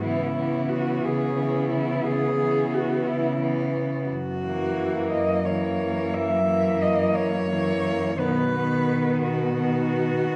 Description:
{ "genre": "classical, lyrical piece for cello ensemble", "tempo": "58 BPM (dotted quarters)", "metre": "12/8", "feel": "rubato", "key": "unclear", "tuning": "A4 = 440 Hz", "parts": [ { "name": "rich cello", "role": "melody", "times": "0.0-10.4 s", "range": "E4 to E5", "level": "-29 LUFS", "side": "equal", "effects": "none" }, { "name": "rich cello", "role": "second line", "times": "0.0-10.4 s", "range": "A#3 to B3", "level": "-31 LUFS", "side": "equal", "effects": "none" }, { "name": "rich cello", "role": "accompaniment", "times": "0.0-10.4 s", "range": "D#3 to E3", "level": "-31 LUFS", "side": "equal", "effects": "none" }, { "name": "warm cello", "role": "bass", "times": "0.0-10.4 s", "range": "F#2 to C#3", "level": "-30 LUFS", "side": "equal", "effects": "none" } ], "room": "wet recital hall reverb, RT60 1.4 s", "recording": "none", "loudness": "-24 LUFS", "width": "mono", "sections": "0.0-10.4 A section", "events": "none", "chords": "0.0 C#m7; 4.1 F#7; 8.2 B" }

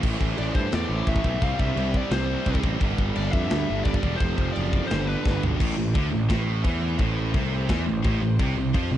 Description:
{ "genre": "heavy metal", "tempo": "172 BPM", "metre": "4/4", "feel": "straight", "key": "A minor", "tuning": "A4 = 441 Hz", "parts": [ { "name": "rich chamber string section", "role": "sustained chords", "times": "0.0-9.0 s", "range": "C3 to C5", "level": "-39 LUFS", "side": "equal", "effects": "none" }, { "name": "heavy high-gain guitar", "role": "riff", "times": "0.0-9.0 s", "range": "F2 to C4", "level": "-29 LUFS", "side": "right 8 dB", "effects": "distortion" }, { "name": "tight distorted guitar", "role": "riff", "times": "0.0-9.0 s", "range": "F2 to G3", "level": "-32 LUFS", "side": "left 14 dB", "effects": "distortion" }, { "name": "fuzz picked electric bass", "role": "bass", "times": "0.0-9.0 s", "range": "E1 to G2", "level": "-26 LUFS", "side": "equal", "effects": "overdrive" }, { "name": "tight metal drum kit", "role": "drums", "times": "0.0-8.8 s", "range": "china cymbal, crash cymbal, kick drum, snare drum, toms", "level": "-27 LUFS", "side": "equal", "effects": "none" }, { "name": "high-gain lead guitar", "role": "melody", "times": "0.4-5.4 s", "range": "B4 to F5", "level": "-32 LUFS", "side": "left 4 dB", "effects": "distortion" } ], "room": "little or no reverb", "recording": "dark, warm production, nothing above 10.6 kHz", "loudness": "-22 LUFS", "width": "side -12 dB against mid", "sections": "0.0-5.6 A section; 5.6-9.0 B section", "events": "drum fill 5.3-5.6", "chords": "0.0 Am; 1.4 C; 2.8 G; 4.2 F; 4.9 G; 5.6 Am; 8.4 C5" }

